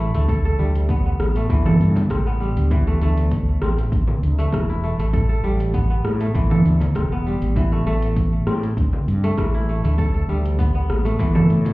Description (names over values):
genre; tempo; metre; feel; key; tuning
organic downtempo; 99 BPM; 4/4; straight; unclear; A4 = 440 Hz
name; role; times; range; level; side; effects
kora; arpeggios; 0.0-11.7 s; E3 to A4; -25 LUFS; equal; ping-pong delay
fretless electric bass; bass; 0.0-11.7 s; E1 to A2; -20 LUFS; equal; sidechain pumping
deep house drum kit; drums; 0.0-11.7 s; congas, hi-hat, rim click, shaker; -22 LUFS; right 1 dB; overdrive
electronic kick drum; drums; 0.3-11.3 s; none; -21 LUFS; equal; overdrive
frame drum; percussion; 1.7-11.7 s; none; -26 LUFS; left 1 dB; none
room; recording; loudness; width
light reverb; heard muffled through a wall, club reverb, EQ; -17 LUFS; side -20 dB against mid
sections
0.0-11.7 A section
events
none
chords
0.0 D7sus4; 3.9 Am7; 8.8 Dsus4; 11.2 Esus4